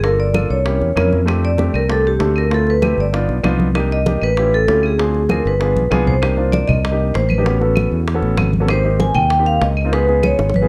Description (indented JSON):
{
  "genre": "Afro-Cuban jazz",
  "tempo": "194 BPM",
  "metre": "4/4",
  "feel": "straight",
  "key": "unclear",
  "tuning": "A4 = 440 Hz",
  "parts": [
    { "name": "vibraphone with medium hard mallets", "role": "melody", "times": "0.0-10.7 s", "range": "G4 to Ab5", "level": "-21 LUFS", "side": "equal", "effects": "none" },
    { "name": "warm grand piano", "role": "accompaniment", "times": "0.0-10.7 s", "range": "A3 to Bb4", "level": "-25 LUFS", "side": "equal", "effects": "none" },
    { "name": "fingered electric bass", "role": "bass", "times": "0.0-10.7 s", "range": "G1 to F2", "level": "-20 LUFS", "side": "equal", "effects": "none" },
    { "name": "bongos", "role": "percussion", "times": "0.0-10.6 s", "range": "none", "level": "-29 LUFS", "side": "equal", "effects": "none" },
    { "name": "congas", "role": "percussion", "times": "0.0-10.6 s", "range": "none", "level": "-25 LUFS", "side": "equal", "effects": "none" },
    { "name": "claves", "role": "percussion", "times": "0.3-10.4 s", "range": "none", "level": "-31 LUFS", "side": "equal", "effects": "none" }
  ],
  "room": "light reverb",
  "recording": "dark, warm production",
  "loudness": "-16 LUFS",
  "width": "mono",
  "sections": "0.0-6.2 A section; 6.2-10.7 B section",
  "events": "drum fill 5.8-6.2, 10.4",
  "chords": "0.0 Gm9; 0.7 C7b9; 1.3 F69; 2.5 Dm9; 3.1 G7b13; 3.8 Cm7; 4.4 A7b13; 5.0 Dm7b5; 5.6 G7b9; 6.2 Cm7; 7.5 A69; 8.7 Abmaj7; 9.9 Db9",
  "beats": "| 0.04 0.35 0.66 0.97 | 1.28 1.59 1.90 2.21 | 2.52 2.83 3.14 3.45 | 3.75 4.07 4.37 4.68 | 4.99 5.30 5.61 5.92 | 6.23 6.54 6.84 7.15 | 7.46 7.77 8.08 8.38 | 8.69 9.00 9.31 9.62 | 9.93 10.24 10.55"
}